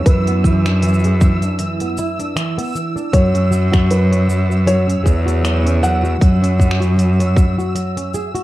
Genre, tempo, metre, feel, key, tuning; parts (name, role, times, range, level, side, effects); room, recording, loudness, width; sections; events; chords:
folktronica; 78 BPM; 4/4; swing 56% on 16ths; A4 = 440 Hz
felt-muted upright piano; melody; 0.0-8.1 s; B4 to F#5; -24 LUFS; equal; ping-pong delay
flamenco guitar; arpeggios; 0.0-8.4 s; E3 to C#5; -22 LUFS; right 1 dB; ping-pong delay
flickering grainy texture; texture; 0.0-8.4 s; E6; -29 LUFS; right 1 dB; built-in reverb
clear cello; bass; 0.1-8.1 s; E2 to F#2; -16 LUFS; equal
electronic kick drum; drums; 0.1-7.5 s; -14 LUFS; equal; overdrive
organic electronic drum kit; drums; 0.1-8.4 s; finger snaps, hi-hat, shaker; -28 LUFS; equal; overdrive
little or no reverb; dark, warm production, vinyl crackle; -13 LUFS; side -16 dB against mid
0.0-8.4 A section
0.1 E7(no3)/F#; 3.1 F#5